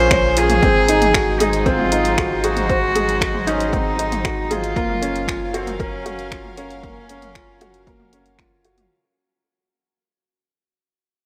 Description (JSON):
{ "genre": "piano and strings electronica", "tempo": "116 BPM", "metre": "4/4", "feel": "straight", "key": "unclear", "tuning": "A4 = 440 Hz", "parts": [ { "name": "warm cello", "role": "melody", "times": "0.0-8.3 s", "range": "C4 to C5", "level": "-22 LUFS", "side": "equal", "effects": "none" }, { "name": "rich symphonic string section", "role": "sustained chords", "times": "0.0-8.9 s", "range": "Gb3 to F5", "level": "-31 LUFS", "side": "equal", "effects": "sidechain pumping" }, { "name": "felt-muted upright piano", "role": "riff", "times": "0.0-8.9 s", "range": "Bb3 to Db5", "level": "-25 LUFS", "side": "equal", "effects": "none" }, { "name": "warm sub bass", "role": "bass", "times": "0.0-8.9 s", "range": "Gb1 to Bb1", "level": "-28 LUFS", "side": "equal", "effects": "sidechain pumping" }, { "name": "deep house drum kit", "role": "drums", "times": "0.1-8.9 s", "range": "finger snaps, hi-hat, toms", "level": "-26 LUFS", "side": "equal", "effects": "overdrive" }, { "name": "electronic kick drum", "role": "drums", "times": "0.1-8.5 s", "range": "none", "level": "-26 LUFS", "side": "equal", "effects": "overdrive" } ], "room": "light reverb, small room ambience", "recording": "none", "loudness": "-18 LUFS", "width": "mono", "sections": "0.0-8.9 A section", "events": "drop 0.0-8.9; fade-out 0.6-8.9", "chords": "0.0 Bbm7; 0.6 Ab7; 4.8 Gbmaj7", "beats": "0.11 | 0.63 1.14 1.66 2.18 | 2.69 3.21 3.73 4.25 | 4.76 5.28 5.80 6.32 | 6.83 7.35 7.87 8.38" }